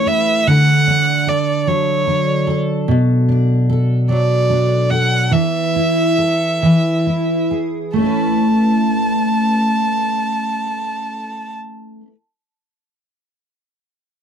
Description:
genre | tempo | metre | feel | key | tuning
pop | 43-50 BPM (dotted quarters) | 6/8 | straight | A major | A4 = 439 Hz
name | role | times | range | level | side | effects
rich violin | melody | 0.0-11.5 s | C#5 to A5 | -18 LUFS | right 2 dB | none
picked steel-string acoustic guitar | accompaniment | 0.0-12.1 s | B2 to B4 | -16 LUFS | equal | double-tracked left and right
room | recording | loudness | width
light reverb | dry, close 1970s-style studio recording | -14 LUFS | side -8 dB against mid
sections
0.0-8.0 A section; 8.0-10.8 B section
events
slowing down 2.9-8.0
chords
0.5 D; 2.9 Bm7; 5.3 Esus4; 6.6 E; 8.0 Aadd9

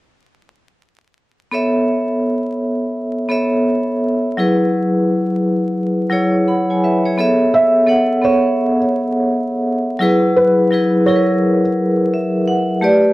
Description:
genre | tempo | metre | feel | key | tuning
hip hop | 85 BPM | 4/4 | swing 65% on 16ths | unclear | A4 = 439 Hz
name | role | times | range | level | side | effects
vibraphone with hard mallets | accompaniment | 1.5-13.1 s | F#3 to B5 | -14 LUFS | equal | cassette tape, plate reverb
felt-muted upright piano | melody | 7.5-11.6 s | B4 to E5 | -16 LUFS | right 1 dB | plate reverb, analog delay
room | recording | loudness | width
wet studio reverb, RT60 0.6 s | worn, warbling old tape, cassette tape, vinyl crackle, warbly pitch drift | -14 LUFS | side -18 dB against mid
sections
1.5-7.2 A section; 7.2-13.1 B section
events
vibraphone fill 11.8-12.8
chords
1.5 B9sus4; 4.3 F#9sus4; 7.2 B9sus4; 10.0 F#9sus4

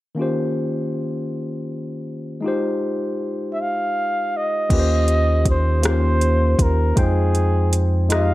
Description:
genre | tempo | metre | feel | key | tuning
slow six-eight R&B | 53 BPM (dotted quarters) | 6/8 | straight | unclear | A4 = 440 Hz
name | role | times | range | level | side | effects
barky tine electric piano | accompaniment | 0.1-8.3 s | Eb3 to G5 | -23 LUFS | left 2 dB | overdrive
breathy flugelhorn | melody | 3.5-8.3 s | Ab4 to F5 | -22 LUFS | right 1 dB | slapback echo
round analog bass | bass | 4.7-8.3 s | Eb2 to F2 | -18 LUFS | equal | none
smooth R&B drum kit | drums | 4.7-8.3 s | crash cymbal, hi-hat, kick drum, rim click | -21 LUFS | equal | overdrive
room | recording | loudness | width
little or no reverb | none | -18 LUFS | side -17 dB against mid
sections
0.2-4.7 A section; 4.7-8.3 B section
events
none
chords
0.2 Eb13; 2.4 Fm7; 4.7 Eb13; 7.0 Fm7

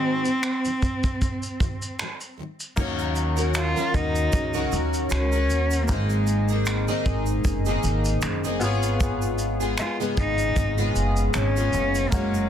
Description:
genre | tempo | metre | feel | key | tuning
acoustic pop | 77 BPM | 4/4 | swing 55% on 16ths | Db major | A4 = 437 Hz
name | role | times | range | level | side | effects
warm cello | melody | 0.0-12.5 s | Ab3 to F4 | -26 LUFS | equal | tape echo
picked plugged-in twelve-string acoustic guitar | accompaniment | 0.0-12.5 s | Ab2 to Bb4 | -27 LUFS | left 1 dB | double-tracked left and right
loose indie drum kit | drums | 0.3-12.3 s | crash cymbal, finger snaps, kick drum, shaker | -28 LUFS | equal | soft clipping on kick
bright upright piano | accompaniment | 2.8-12.5 s | Gb3 to Db5 | -34 LUFS | left 5 dB | none
upright bass | bass | 2.8-12.5 s | Gb1 to Eb2 | -25 LUFS | equal | none
tube shaker | percussion | 2.8-12.5 s | none | -40 LUFS | right 11 dB | none
room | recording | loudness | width
light reverb | dense, heavily limited modern master | -21 LUFS | side -9 dB against mid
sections
0.0-2.8 A section; 2.8-12.5 B section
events
none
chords
0.0 Ab7; 2.8 Ebm7; 5.9 Abadd9; 8.6 Db7/Ab

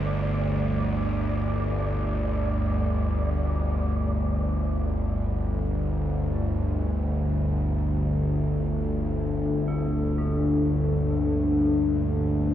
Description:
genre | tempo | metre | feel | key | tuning
dark ambient drone | free time | none | none | G minor | A4 = 441 Hz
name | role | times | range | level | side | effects
bowed-like drone | drone | 0.0-12.5 s | G1 to D2 | -24 LUFS | equal | built-in reverb
wind-like tuned noise texture | texture | 0.0-4.0 s | D5 | -36 LUFS | right 3 dB | built-in reverb
dark analog pad | sustained chords | 5.6-12.5 s | G3 to A4 | -28 LUFS | left 2 dB | chorus
gamelan-type bronze metallophone | arpeggios | 6.3-12.5 s | A3 to C4 | -45 LUFS | right 1 dB | tape echo
room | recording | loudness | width
wet cathedral reverb, RT60 5.5 s | dark, warm production | -23 LUFS | side -11 dB against mid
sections
0.0-4.0 A section; 4.0-12.5 B section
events
fade-in on bronze metallophone 4.0-12.5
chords
0.0 G5; 4.0 Gm

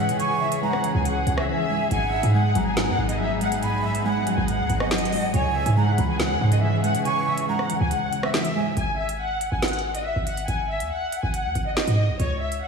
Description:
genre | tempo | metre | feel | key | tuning
hip hop, drill | 140 BPM | 4/4 | half-time | G# minor | A4 = 440 Hz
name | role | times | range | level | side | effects
warm studio violin section | melody | 0.0-12.7 s | C#5 to G#5 | -27 LUFS | left 2 dB | analog delay
muted felt-like synth keys | accompaniment | 0.0-8.8 s | G#2 to G#3 | -27 LUFS | equal | chorus
muted studio string section | sustained chords | 0.0-8.7 s | E3 to G#4 | -30 LUFS | equal | none
short 808-style bass | bass | 0.0-12.6 s | F#1 to C#3 | -25 LUFS | right 1 dB | none
drill drum kit | drums | 0.1-12.6 s | hi-hat, rim click, snare drum | -29 LUFS | right 1 dB | none
breathy jazz flute | second line | 0.2-8.8 s | F#5 to C#6 | -29 LUFS | right 6 dB | analog delay
room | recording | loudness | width
moderate lush hall reverb, RT60 1.7 s, small room ambience | dreamy mix soaked in reverb, small room reverb | -21 LUFS | side -5 dB against mid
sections
0.0-8.8 A section; 8.8-12.7 B section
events
silent gap 1.5-1.9; kick muted 7.9-8.8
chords
0.0 C#m; 1.9 G#m7; 5.3 C#m; 8.8 G#5

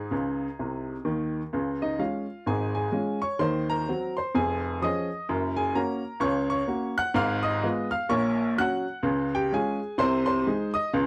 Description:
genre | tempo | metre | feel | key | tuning
jazz, stride piano | 128 BPM | 4/4 | swing 60% on 8ths | Db major | A4 = 440 Hz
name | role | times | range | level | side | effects
clear upright piano | solo | 0.0-11.1 s | F1 to Gb6 | -27 LUFS | equal | none
room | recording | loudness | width
light reverb | dry, close 1970s-style studio recording | -27 LUFS | mono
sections
0.0-1.5 A section; 1.5-11.1 B section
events
upright piano fill 0.1-1.5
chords
0.0 Ab; 1.5 Db; 3.4 Cdim/Eb; 4.3 Db/F; 5.3 Gb; 7.2 Fdim/Ab; 8.1 Gb/Bb; 9.0 Db; 10.0 Ab/C

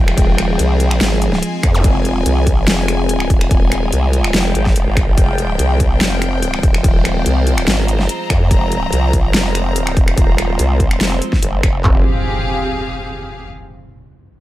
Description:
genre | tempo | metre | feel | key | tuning
heavy wobble dubstep | 144 BPM | 4/4 | swing 53% on 16ths, half-time | F minor | A4 = 440 Hz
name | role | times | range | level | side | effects
evolving wavetable pad | sustained chords | 0.0-12.0 s | F3 to C5 | -23 LUFS | left 1 dB | phaser, built-in reverb, sidechain pumping
formant-sweep wobble bass | bass | 0.0-12.0 s | Eb1 to F2 | -16 LUFS | equal | chorus, overdrive
rich studio string section | texture | 0.0-13.5 s | Ab3 to Bb5 | -24 LUFS | equal | sidechain pumping
dubstep drum kit | drums | 0.1-11.7 s | finger snaps, hi-hat, snare drum | -19 LUFS | equal | overdrive, small room ambience
big-room dance drum kit | drums | 0.2-11.9 s | handclaps, kick drum | -14 LUFS | equal | overdrive, small room ambience
zap and impact | sound effects | 1.7-1.8, 11.8-13.5 s | none | -23 LUFS | equal | none
room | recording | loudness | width
digital ambience | none | -12 LUFS | side -15 dB against mid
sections
0.0-11.8 A section; 11.8-13.5 B section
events
drop 0.0-11.8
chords
0.0 Fmadd9

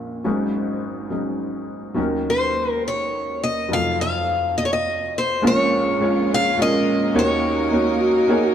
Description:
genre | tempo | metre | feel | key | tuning
acoustic folk-pop ballad | 104 BPM | 3/4 | straight | Bb minor | A4 = 439 Hz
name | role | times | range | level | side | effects
felt-muted upright piano | accompaniment | 0.0-8.5 s | F1 to Db5 | -22 LUFS | right 1 dB | none
picked steel-string acoustic guitar | melody | 2.3-8.3 s | C5 to F5 | -21 LUFS | left 1 dB | none
warm chamber string section | sustained chords | 5.4-8.5 s | Gb3 to Bb4 | -26 LUFS | equal | none
mellow French horn | second line | 7.7-8.5 s | F4 to Ab4 | -19 LUFS | equal | none
room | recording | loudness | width
wet plate reverb, RT60 3.2 s | heard from further back in the room | -18 LUFS | side -9 dB against mid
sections
0.0-5.4 A section; 5.4-8.5 B section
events
none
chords
0.2 Ab7sus4; 2.0 Ebm7; 3.7 F7b9; 5.4 Bbm7; 7.2 Ebm7

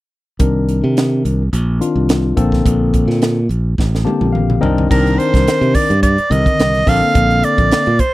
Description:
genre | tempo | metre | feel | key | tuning
electric jazz fusion | 107 BPM | 4/4 | straight | C dorian | A4 = 440 Hz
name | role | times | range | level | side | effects
barky tine electric piano | accompaniment | 0.4-7.9 s | D3 to A5 | -17 LUFS | left 4 dB | none
modern bright fingered electric bass | bass | 0.4-8.0 s | A1 to C3 | -16 LUFS | right 1 dB | none
crisp fusion drum kit | drums | 0.4-8.1 s | crash cymbal, hi-hat, kick drum, snare drum, toms | -18 LUFS | equal | none
clear soprano saxophone | melody | 4.9-8.1 s | Bb4 to F5 | -15 LUFS | right 2 dB | none
room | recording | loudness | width
little or no reverb | none | -12 LUFS | side -17 dB against mid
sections
0.4-4.9 A section; 4.9-8.1 B section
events
drum fill 3.8-4.9; tine electric piano fill 3.8-4.9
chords
0.4 Cm9; 2.4 Bbmaj9; 4.6 Cm9; 6.9 Bbmaj9

